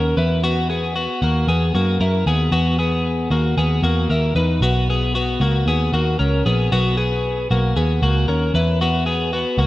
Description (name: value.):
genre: jangly indie pop.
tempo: 115 BPM.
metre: 4/4.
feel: straight.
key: B major.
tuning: A4 = 442 Hz.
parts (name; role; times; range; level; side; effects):
twelve-string electric guitar; arpeggios; 0.0-9.7 s; A#3 to B4; -20 LUFS; left 2 dB; none.
vintage muted picked electric bass; bass; 0.0-9.7 s; A#1 to F#2; -18 LUFS; right 1 dB; none.
room: moderate lush hall reverb, RT60 2.6 s.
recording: rough home demo mix.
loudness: -16 LUFS.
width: side -16 dB against mid.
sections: 0.0-9.7 A section.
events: none.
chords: 0.2 Esus2; 4.6 Badd9; 8.5 F#add9.